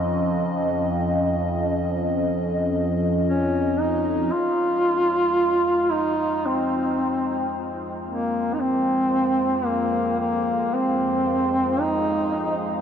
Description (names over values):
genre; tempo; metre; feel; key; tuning
ambient; 56 BPM; 4/4; straight; F minor; A4 = 439 Hz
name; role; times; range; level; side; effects
dark analog pad; sustained chords; 0.0-12.8 s; F3 to F5; -27 LUFS; equal; chorus
overtone-sweeping drone; drone; 0.0-12.8 s; F2 to Ab3; -30 LUFS; equal; chorus, built-in reverb
bronze singing bowl; texture; 0.0-12.8 s; F3; -41 LUFS; equal; none
mellow duduk; melody; 3.3-12.6 s; Bb3 to F4; -21 LUFS; equal; diffuse ambient delay
room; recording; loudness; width
wet huge ambient reverb, RT60 8.7 s; dark, warm production; -20 LUFS; side -8 dB against mid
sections
0.0-4.4 A section; 4.4-12.8 B section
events
fade-in on synth drone 4.4-12.8; fade-in on analog synth pad 4.4-12.8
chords
0.0 Dbadd9/F; 4.4 Fm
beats
| 0.08 1.15 2.22 3.29 | 4.36 5.43 6.50 7.58 | 8.65 9.72 10.79 11.86